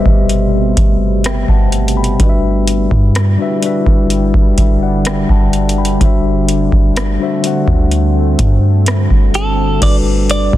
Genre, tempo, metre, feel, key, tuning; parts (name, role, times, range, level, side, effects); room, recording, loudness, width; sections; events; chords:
contemporary R&B; 63 BPM; 4/4; straight; A4 = 441 Hz
mellow tine electric piano; accompaniment; 0.0-10.6 s; G3 to B5; -17 LUFS; left 4 dB; medium stereo tremolo
deep dark ambient pad; sustained chords; 0.0-10.6 s; B2 to F#4; -20 LUFS; right 1 dB; chorus, built-in reverb, sidechain pumping
soft 808-style bass; bass; 0.0-10.6 s; G1 to G2; -15 LUFS; equal
booming analog drum machine; drums; 0.1-10.6 s; crash cymbal, hi-hat, kick drum, rim click; -13 LUFS; equal; overdrive
direct-recorded clean electric guitar; melody; 9.4-10.6 s; A4 to D5; -17 LUFS; right 2 dB; analog chorus, tape echo
little or no reverb; dense, heavily limited modern master; -10 LUFS; side -14 dB against mid
0.0-9.8 A section
0.0 Am9/G; 2.2 Em9/G; 6.0 D7/G; 9.8 Gmaj9